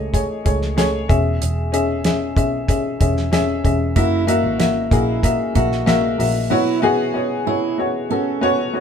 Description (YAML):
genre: piano-driven pop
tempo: 94 BPM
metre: 4/4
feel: straight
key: E major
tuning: A4 = 440 Hz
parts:
  - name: dark upright piano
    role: accompaniment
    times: 0.0-8.8 s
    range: A2 to E5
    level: -19 LUFS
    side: left 2 dB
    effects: none
  - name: vintage muted picked electric bass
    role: bass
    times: 0.0-6.5 s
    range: E1 to C#2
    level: -23 LUFS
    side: right 1 dB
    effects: none
  - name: damped 70s drum kit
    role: drums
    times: 0.1-6.3 s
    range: hi-hat, kick drum, snare drum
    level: -20 LUFS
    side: right 1 dB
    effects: none
  - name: fingerpicked steel-string acoustic guitar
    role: riff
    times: 4.0-8.6 s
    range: C#4 to F#4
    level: -24 LUFS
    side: right 8 dB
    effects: none
room: moderate studio reverb, RT60 0.6 s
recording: band playing live in one room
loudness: -16 LUFS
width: side -7 dB against mid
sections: 0.0-8.8 A section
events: none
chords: 0.0 Amaj7; 1.1 E6; 4.0 F#7; 6.5 Bsus2